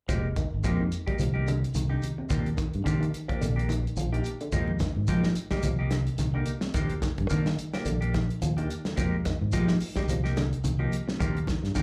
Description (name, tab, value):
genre	afrobeat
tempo	108 BPM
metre	4/4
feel	swing 56% on 16ths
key	F dorian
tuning	A4 = 440 Hz
part	electric guitar through a small old amp	arpeggios	0.1-11.8 s	C3 to G3	-39 LUFS	equal	phaser, slapback echo
part	clean electric guitar	stabs	0.1-11.8 s	F3 to G4	-37 LUFS	equal	subtle chorus, slapback echo
part	fingered electric bass	bass	0.1-11.8 s	F1 to F3	-30 LUFS	equal	none
part	damped 70s drum kit	drums	0.1-11.8 s	hi-hat, kick drum, snare drum	-34 LUFS	equal	none
part	shekere	percussion	0.1-11.8 s	none	-40 LUFS	equal	slapback echo
part	congas	percussion	0.4-11.6 s	none	-38 LUFS	equal	slapback echo
room	light reverb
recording	live gig heard through the venue's PA, club reverb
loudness	-28 LUFS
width	mono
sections	0.1-11.8 A section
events	none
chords	0.1 Fm11; 2.3 Ebmaj9; 4.5 Fm11; 6.8 Ebmaj9; 9.0 Fm11; 11.2 Ebmaj9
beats	| 0.09 0.65 1.20 1.75 | 2.31 2.87 3.42 3.98 | 4.53 5.09 5.64 6.20 | 6.75 7.31 7.87 8.42 | 8.98 9.54 10.09 10.65 | 11.21 11.76